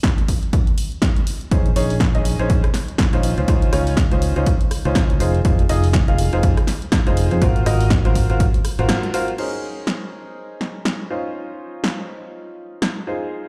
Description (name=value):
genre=piano house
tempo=122 BPM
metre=4/4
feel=swing 58% on 16ths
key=Bb minor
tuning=A4 = 440 Hz
part: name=electronic kick drum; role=drums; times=0.0-8.5 s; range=none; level=-20 LUFS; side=equal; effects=none
part: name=punchy analog drum machine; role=drums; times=0.0-12.9 s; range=crash cymbal, hi-hat, rim click, snare drum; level=-27 LUFS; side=equal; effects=none
part: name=clear upright piano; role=riff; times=1.5-13.5 s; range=Db4 to F5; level=-26 LUFS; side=equal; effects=sidechain pumping, tape echo
part: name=fingered electric bass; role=bass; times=1.5-8.9 s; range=F1 to F2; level=-22 LUFS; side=equal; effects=tube saturation, sidechain pumping
room=digital ambience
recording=played on a big sound system in a bare room, large studio reverb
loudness=-19 LUFS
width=mono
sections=0.0-9.4 A section; 9.4-13.5 B section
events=kick drops out 8.9-9.4; band accent 8.9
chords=0.0 N.C.; 1.5 Bbm11; 3.2 Dbmaj9; 5.2 Fm7; 7.4 Ab13; 9.4 Bbm11; 11.1 Dbmaj9